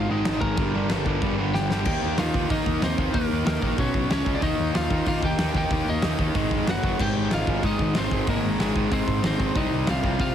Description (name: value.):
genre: punk rock.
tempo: 187 BPM.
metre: 4/4.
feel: straight.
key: unclear.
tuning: A4 = 441 Hz.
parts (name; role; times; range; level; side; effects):
lightly driven lead guitar; melody; 0.0-10.3 s; Ab3 to Bb5; -28 LUFS; equal; none.
distorted electric guitar; riff; 0.0-10.3 s; F#2 to Eb4; -26 LUFS; equal; distortion.
fuzz picked electric bass; bass; 0.0-10.3 s; F1 to Eb3; -28 LUFS; equal; overdrive.
big rock drum kit; drums; 0.3-10.3 s; crash cymbal, hi-hat, kick drum, snare drum; -27 LUFS; equal; none.
room: small room ambience.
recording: heavily compressed radio sound.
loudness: -21 LUFS.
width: side -9 dB against mid.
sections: 0.0-1.9 A section; 1.9-10.3 B section.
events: drum fill 1.5-1.9.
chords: 0.0 Ab5; 0.6 Gm; 1.9 Eb; 3.8 B5; 4.1 Db5; 4.4 Eb; 6.4 Ab5; 6.7 F#5; 7.0 Ab; 9.6 Cm.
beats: 0.25 | 0.57 0.90 1.22 1.54 | 1.86 2.18 2.50 2.82 | 3.14 3.46 3.79 4.11 | 4.43 4.75 5.07 5.39 | 5.71 6.03 6.35 6.67 | 6.99 7.31 7.63 7.95 | 8.28 8.60 8.92 9.24 | 9.56 9.88 10.20.